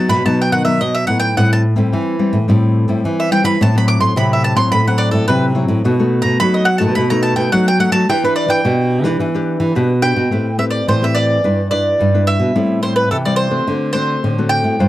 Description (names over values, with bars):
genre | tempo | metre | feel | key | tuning
samba and choro | 107 BPM | 4/4 | straight | E minor, A minor from 10.3 s | A4 = 442 Hz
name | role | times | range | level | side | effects
mandolin | melody | 0.0-14.9 s | A4 to D6 | -17 LUFS | right 1 dB | none
nylon-string guitar | accompaniment | 0.0-14.9 s | A2 to C5 | -18 LUFS | left 3 dB | none
nylon-string guitar | bass | 0.0-14.9 s | G2 to F#3 | -16 LUFS | right 1 dB | none
room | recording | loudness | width
light reverb | dry, close 1970s-style studio recording | -13 LUFS | side -15 dB against mid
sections
0.0-10.3 A section; 10.3-14.9 B section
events
mandolin solo 0.0-10.3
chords
0.0 B; 1.4 Am7; 3.6 F#m7b5/A; 5.8 B7; 8.1 Em7; 10.3 Am9; 11.4 Em7/G; 12.6 Am7; 13.7 D7